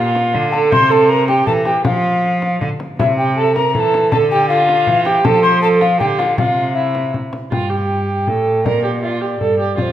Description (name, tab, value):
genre	classical, renaissance-style consort dance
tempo	159 BPM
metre	3/4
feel	straight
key	C mixolydian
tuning	A4 = 445 Hz
part	mellow hollow alto recorder	melody	0.0-9.9 s	C5 to C6	-17 LUFS	left 3 dB	none
part	rich viola	second line	0.0-9.9 s	E4 to C5	-17 LUFS	right 4 dB	none
part	rich cello	bass	0.0-9.9 s	F2 to F3	-20 LUFS	right 1 dB	none
part	frame drum	percussion	0.2-9.9 s	none	-23 LUFS	left 2 dB	none
room	wet recital hall reverb, RT60 1.7 s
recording	none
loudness	-13 LUFS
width	side -11 dB against mid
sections	0.0-7.5 A section; 7.5-9.9 B section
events	none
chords	0.0 Bb; 0.7 C; 1.8 N.C.; 3.0 C; 4.1 Dm; 5.2 Dmadd11; 6.4 C; 7.5 Gsus2; 8.7 Bb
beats	0.34 | 0.72 1.09 1.47 | 1.85 2.23 2.61 | 2.99 3.37 3.75 | 4.12 4.50 4.87 | 5.25 5.62 6.00 | 6.38 6.76 7.14 | 7.52 7.90 8.27 | 8.65 9.03 9.40 | 9.78